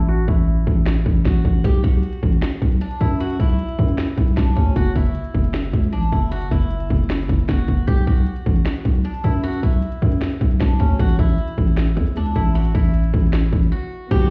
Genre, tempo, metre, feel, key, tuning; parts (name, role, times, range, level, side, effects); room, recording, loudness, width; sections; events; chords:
hip hop, trap; 154 BPM; 4/4; half-time; A4 = 440 Hz
picked swing-style acoustic guitar; melody; 0.0-14.3 s; C#4 to G4; -31 LUFS; equal; low-pass filter, analog delay
growling 808-style bass; bass; 0.0-14.3 s; F#1 to F#2; -22 LUFS; equal
trap drum kit; drums; 0.3-14.3 s; crash cymbal, finger snaps, hi-hat, kick drum, snare drum; -21 LUFS; equal
dark studio string section; sustained chords; 14.1-14.3 s; D3 to F#4; -25 LUFS; equal
digital ambience; heard muffled through a wall, stone room reverb, EQ; -19 LUFS; mono
0.0-14.1 A section
filter sweep on steel-string acoustic guitar 0.0-1.6; hi-hats muted 0.1-1.6; break 13.7-14.1
0.0 A5; 1.6 B5; 4.8 N.C.; 7.9 B5; 11.0 A5